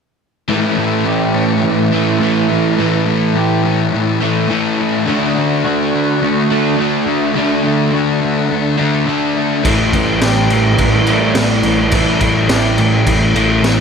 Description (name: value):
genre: rock, shoegaze and dream pop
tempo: 105 BPM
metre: 4/4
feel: straight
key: A mixolydian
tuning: A4 = 440 Hz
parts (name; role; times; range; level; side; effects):
- electric guitar through a small old amp; arpeggios; 0.5-13.8 s; E3 to G4; -23 LUFS; equal; lush chorus, analog delay
- crunchy overdriven guitar; riff; 0.5-13.8 s; A2 to D4; -19 LUFS; equal; none
- overdriven electric guitar; riff; 0.5-13.8 s; A2 to G4; -19 LUFS; right 10 dB; reverse reverb
- thick fuzz guitar; riff; 0.5-13.8 s; A2 to D4; -17 LUFS; left 8 dB; distortion, wide subtle chorus
- overdriven picked electric bass; bass; 9.6-13.8 s; A1; -18 LUFS; right 1 dB; none
- raw garage drum kit; drums; 9.6-13.8 s; crash cymbal, kick drum, snare drum; -16 LUFS; right 1 dB; none
room: light reverb, studio reverb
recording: none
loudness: -12 LUFS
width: side -6 dB against mid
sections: 0.5-13.8 A section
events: none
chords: 0.5 A7; 5.1 D; 9.6 A7